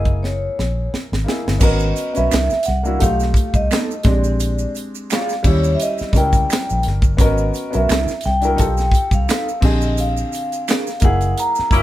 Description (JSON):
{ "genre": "R&B, neo-soul", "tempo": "86 BPM", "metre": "4/4", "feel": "swing 55% on 16ths", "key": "unclear", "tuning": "A4 = 440 Hz", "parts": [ { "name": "vibraphone with soft mallets", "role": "melody", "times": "0.0-11.8 s", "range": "C#5 to A#5", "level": "-22 LUFS", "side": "equal", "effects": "none" }, { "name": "warm upright piano", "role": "accompaniment", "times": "0.0-11.8 s", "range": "D3 to B4", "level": "-24 LUFS", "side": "equal", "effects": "none" }, { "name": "vintage muted fingered electric bass", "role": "bass", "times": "0.0-11.8 s", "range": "F#1 to D#2", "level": "-20 LUFS", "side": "equal", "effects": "none" }, { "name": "tight funk drum kit", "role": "drums", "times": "0.1-11.8 s", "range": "crash cymbal, handclaps, hi-hat, kick drum, snare drum", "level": "-18 LUFS", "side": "equal", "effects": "none" }, { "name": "maracas and finger snaps", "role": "percussion", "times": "1.6-11.8 s", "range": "none", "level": "-32 LUFS", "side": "right 6 dB", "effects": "none" }, { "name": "electric guitar through a small old amp", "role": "second line", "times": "2.3-10.9 s", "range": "B3 to D5", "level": "-26 LUFS", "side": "right 3 dB", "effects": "none" }, { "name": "warm horn section", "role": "stabs", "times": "11.7-11.8 s", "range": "A#3 to E4", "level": "-17 LUFS", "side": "left 3 dB", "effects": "none" } ], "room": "light reverb", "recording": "band playing live in one room", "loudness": "-15 LUFS", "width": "side -14 dB against mid", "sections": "0.0-1.6 A section; 1.6-11.8 B section", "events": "drum fill 0.2-1.6; band accent 10.0-11.8", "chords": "0.0 F#7; 1.6 G#m9; 2.3 C9; 3.0 Baug7; 4.0 A#7; 5.4 D#7b9; 7.2 G#m9; 7.9 C9; 8.6 Baug7; 9.6 A#7; 11.0 F#7" }